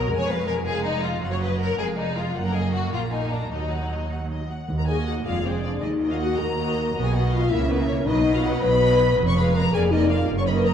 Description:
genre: quick classical-period movement for symphony orchestra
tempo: 107 BPM (dotted quarters)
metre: 6/8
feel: rubato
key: Eb minor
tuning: A4 = 440 Hz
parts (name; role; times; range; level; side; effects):
- rich studio violin section; melody; 0.0-10.7 s; D5 to Bb5; -36 LUFS; left 4 dB; none
- rich studio violin section; second line; 0.0-10.7 s; D4 to Db6; -29 LUFS; left 4 dB; none
- rich symphonic viola section; accompaniment; 0.0-10.7 s; F#3 to B4; -31 LUFS; right 2 dB; none
- rich studio cello section; bass; 0.0-10.7 s; Eb2 to Db3; -27 LUFS; right 2 dB; none
- rich studio double bass section; bass; 0.0-10.7 s; F1 to Eb2; -27 LUFS; right 3 dB; none
- timpani; percussion; 4.7-5.2 s; Eb3; -31 LUFS; equal; none
- mellow French horn section; sustained chords; 4.8-10.7 s; Cb4 to Db5; -23 LUFS; left 4 dB; none
room: wet concert hall reverb, RT60 2.0 s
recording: dark, warm production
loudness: -20 LUFS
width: side -8 dB against mid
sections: 0.0-4.7 A section; 4.7-10.7 A section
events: none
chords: 0.1 Fdim; 1.2 Ebm/Gb; 1.8 Fm7; 2.4 Ebm/Gb; 2.9 Bbadd11; 3.5 Ebm; 5.3 Ddim/F; 5.8 Ebm; 7.0 B; 7.5 Bbdim/Db; 8.1 B; 9.2 Fdim; 9.7 Bb/F

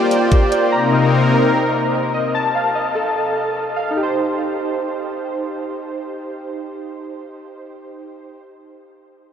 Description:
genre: hip hop, atmospheric cloud-rap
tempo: 148 BPM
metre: 4/4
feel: half-time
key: Eb lydian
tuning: A4 = 440 Hz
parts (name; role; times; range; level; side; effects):
- warm analog pad; sustained chords; 0.0-2.3 s; C3 to D5; -18 LUFS; left 2 dB; chorus, sidechain pumping
- warbly lo-fi synth keys; arpeggios; 0.0-8.5 s; Eb4 to Bb5; -21 LUFS; equal; chorus, tape echo
- trap drum kit; drums; 0.1-0.6 s; hi-hat, kick drum; -18 LUFS; equal; none
room: wet huge ambient reverb, RT60 8.2 s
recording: dreamy mix soaked in reverb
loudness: -16 LUFS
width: side -8 dB against mid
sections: 0.0-4.0 A section; 4.0-7.2 B section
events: none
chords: 0.0 Bb6; 0.7 Cm7; 2.3 F7; 4.0 Eb6

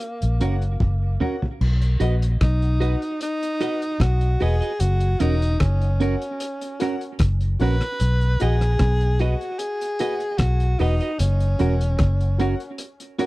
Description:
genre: roots reggae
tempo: 75 BPM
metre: 4/4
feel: straight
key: B major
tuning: A4 = 440 Hz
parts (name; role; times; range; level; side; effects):
- breathy tenor saxophone; melody; 0.0-12.8 s; A#3 to B4; -28 LUFS; equal; tape echo
- cloth-damped thuddy drum kit; drums; 0.0-13.3 s; crash cymbal, hi-hat, kick drum, rim click, toms; -25 LUFS; equal; none
- vintage muted fingered electric bass; bass; 0.2-12.5 s; E1 to B1; -19 LUFS; equal; none
- clean electric guitar; accompaniment; 0.4-13.3 s; C#4 to D#5; -27 LUFS; right 6 dB; tape echo
- dark upright piano; stabs; 0.4-13.3 s; F#4 to F#5; -30 LUFS; left 4 dB; none
room: little or no reverb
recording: dry, close 1970s-style studio recording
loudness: -19 LUFS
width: side -19 dB against mid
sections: 0.0-1.6 A section; 1.6-13.3 B section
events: drum fill 0.8-1.6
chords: 0.0 F#; 1.6 B; 4.8 F#; 8.0 B; 11.2 F#

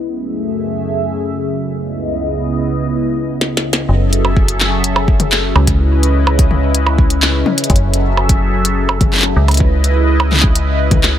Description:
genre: IDM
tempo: 126 BPM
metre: 4/4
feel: straight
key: F# dorian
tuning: A4 = 440 Hz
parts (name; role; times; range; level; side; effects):
- phased analog pad; sustained chords; 0.0-11.2 s; C#2 to E5; -17 LUFS; equal; phaser, chorus, sidechain pumping
- glitchy drum kit; drums; 3.4-11.1 s; handclaps, hi-hat, percussion blips, snare drum, toms; -16 LUFS; equal; none
- metallic FM bass; bass; 3.9-11.2 s; F#1 to C#2; -14 LUFS; equal; none
- electronic kick drum; drums; 4.4-11.0 s; none; -14 LUFS; equal; none
room: little or no reverb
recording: none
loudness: -12 LUFS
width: side -10 dB against mid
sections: 0.0-3.9 A section; 3.9-11.2 B section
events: drum fill 3.4-3.9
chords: 0.1 F#m9; 1.7 C#m9; 3.9 F#m9; 5.6 C#m9; 7.7 F#m9; 9.4 C#m9

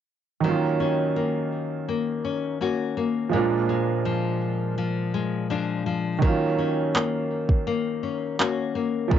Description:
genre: contemporary R&B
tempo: 83 BPM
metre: 4/4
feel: straight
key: Eb minor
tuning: A4 = 440 Hz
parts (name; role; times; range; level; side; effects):
- warm baby grand piano; accompaniment; 0.4-9.2 s; Eb3 to F4; -27 LUFS; right 7 dB; cassette tape
- nylon-string guitar; arpeggios; 0.4-9.2 s; Bb2 to Gb4; -25 LUFS; left 6 dB; cassette tape, tape echo
- smooth R&B drum kit; drums; 6.2-9.2 s; handclaps, kick drum; -21 LUFS; right 1 dB; cassette tape
room: moderate booth ambience, RT60 0.3 s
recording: home recording on cassette, nothing above 7.8 kHz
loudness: -23 LUFS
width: side -9 dB against mid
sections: 0.4-9.2 A section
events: none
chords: 0.4 Ebm7; 3.3 Bb7; 6.2 Ebm7

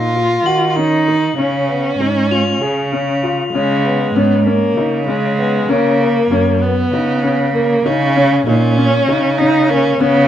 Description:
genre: contemporary instrumental, chamber music in an uneven meter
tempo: 195 BPM (eighths)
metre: 7/8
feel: straight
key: Db mixolydian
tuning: A4 = 442 Hz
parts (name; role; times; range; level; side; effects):
- warm viola; second line; 0.0-10.3 s; Ab3 to F4; -16 LUFS; right 1 dB; none
- warm concert grand piano; arpeggios; 0.0-10.3 s; Bb3 to Ab4; -18 LUFS; left 4 dB; none
- rich cello; bass; 0.0-10.3 s; Gb2 to Eb3; -17 LUFS; right 2 dB; none
- crotales; texture; 0.5-3.8 s; F7 to Gb7; -27 LUFS; left 3 dB; none
room: moderate studio reverb, RT60 0.7 s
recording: none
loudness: -12 LUFS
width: side -10 dB against mid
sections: 0.0-3.5 A section; 3.5-10.3 B section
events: none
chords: 0.0 Ebmadd9; 1.4 Db; 3.5 Db7(no3); 5.7 Cbmaj7(no3); 7.9 Eb5

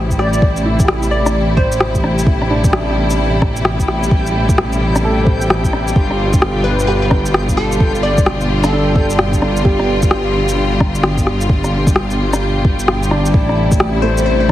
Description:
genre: future garage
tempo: 130 BPM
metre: 4/4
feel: swing 63% on 16ths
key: A minor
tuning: A4 = 440 Hz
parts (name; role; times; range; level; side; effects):
- warm upright piano; accompaniment; 0.0-14.5 s; G3 to C5; -23 LUFS; right 2 dB; sidechain pumping, tape echo
- clear studio string section; sustained chords; 0.0-14.5 s; B2 to F4; -20 LUFS; left 1 dB; sidechain pumping
- swelling detuned saw bass; bass; 0.0-14.5 s; G1 to A1; -18 LUFS; equal; sidechain pumping
- backwards swelling texture; texture; 0.1-14.5 s; G5; -28 LUFS; right 1 dB; built-in reverb
- electronic kick drum; drums; 0.1-14.5 s; none; -14 LUFS; equal; studio reverb
- electronic shaker and rim click; drums; 0.1-14.5 s; none; -18 LUFS; left 1 dB; studio reverb
- glassy wavetable pluck; melody; 0.2-2.0, 6.6-9.1, 14.0-14.5 s; A4 to D5; -21 LUFS; left 2 dB; chorus, tape echo
room: light reverb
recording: heavily compressed radio sound, vinyl crackle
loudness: -12 LUFS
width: side -13 dB against mid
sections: 0.0-14.5 A section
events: kick drops out 12.9-13.3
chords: 0.0 Am7; 6.0 G7; 13.3 Am7

